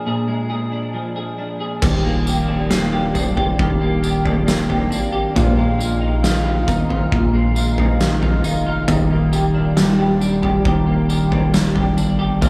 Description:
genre	dream pop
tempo	68 BPM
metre	4/4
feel	straight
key	Eb major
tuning	A4 = 440 Hz
part	semi-hollow electric guitar	arpeggios	0.0-12.5 s	Bb2 to Ab4	-21 LUFS	equal	ensemble chorus, diffuse ambient delay
part	saturated sub bass	bass	1.8-12.5 s	Eb1 to Bb1	-25 LUFS	equal	none
part	oversized low-tuned drum kit	drums	1.8-12.5 s	crash cymbal, kick drum, snare drum, tambourine, toms	-23 LUFS	equal	none
room	moderate cathedral reverb, RT60 6.5 s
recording	dreamy mix soaked in reverb, small room ambience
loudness	-18 LUFS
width	mono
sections	0.0-1.8 A section; 1.8-12.5 B section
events	none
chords	0.0 Bb7; 1.8 Ebmaj7; 5.4 Bb7sus4; 8.9 Ebmaj7

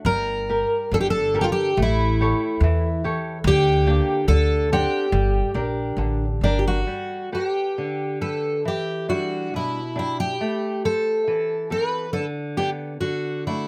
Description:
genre	fado-style ballad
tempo	67-72 BPM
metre	2/4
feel	rubato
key	G minor, G major from 6.9 s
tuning	A4 = 440 Hz
part	upright bass	bass	0.0-6.8 s	G1 to E2	-24 LUFS	equal	none
part	fingerpicked twelve-string acoustic guitar	melody	0.1-13.7 s	D4 to B4	-25 LUFS	equal	none
part	flamenco guitar	accompaniment	0.1-13.7 s	B2 to F#5	-30 LUFS	equal	none
room	little or no reverb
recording	close, detailed microphones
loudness	-23 LUFS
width	mono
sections	0.0-6.9 A section; 6.9-13.7 B section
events	none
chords	0.1 Gmadd9; 1.8 A7; 3.4 Gm/D; 4.3 D7; 5.1 Gm; 6.9 Gadd9; 8.6 Em7; 10.4 Am7; 12.1 G/D; 13.0 D

